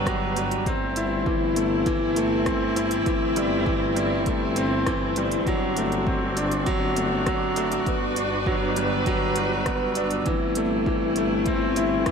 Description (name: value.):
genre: piano and strings electronica.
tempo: 100 BPM.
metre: 4/4.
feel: straight.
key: unclear.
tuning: A4 = 444 Hz.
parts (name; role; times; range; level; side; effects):
rich string quartet; sustained chords; 0.0-12.1 s; A3 to B4; -28 LUFS; right 1 dB; none.
clear concert grand piano; riff; 0.0-12.1 s; E3 to E4; -24 LUFS; equal; ping-pong delay.
muted studio double bass section; bass; 0.0-12.1 s; G1; -30 LUFS; left 2 dB; sidechain pumping.
impact; sound effects; 0.0-0.7 s; none; barely audible; none; none.
deep house drum kit; drums; 0.1-12.1 s; hi-hat, rim click; -33 LUFS; equal; none.
electronic kick drum; drums; 0.1-12.1 s; none; -29 LUFS; equal; none.
room: wet lush hall reverb, RT60 2.0 s.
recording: dreamy mix soaked in reverb.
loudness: -21 LUFS.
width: side -6 dB against mid.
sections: 0.0-12.1 A section.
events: impact 0.0-0.7.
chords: 0.0 Gmaj7; 0.7 C6/G; 5.5 D7/G; 7.9 Gmaj7; 10.3 C6/G.